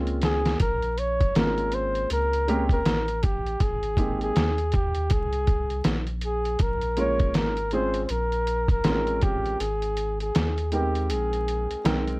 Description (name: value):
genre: hip hop, jazz-hop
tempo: 80 BPM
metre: 4/4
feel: swing 60% on 16ths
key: Bb dorian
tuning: A4 = 443 Hz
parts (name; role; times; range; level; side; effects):
- dark grand piano; accompaniment; 0.0-12.2 s; Ab3 to G5; -29 LUFS; right 1 dB; none
- soft dub sub bass; bass; 0.0-12.2 s; Ab1 to Eb2; -29 LUFS; equal; none
- trip hop sampler-style drum kit; drums; 0.1-12.2 s; hi-hat, kick drum, snare drum; -25 LUFS; equal; none
- mellow flugelhorn; melody; 0.2-12.0 s; G4 to Db5; -27 LUFS; equal; none
room: little or no reverb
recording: dark, warm production, vinyl crackle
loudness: -22 LUFS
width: side -24 dB against mid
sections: 0.6-12.2 A section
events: drum fill 0.0-0.6; kick muted 9.6-12.2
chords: 0.0 Bbm9; 3.6 Abmaj9; 6.6 Bbm9; 9.6 Abmaj9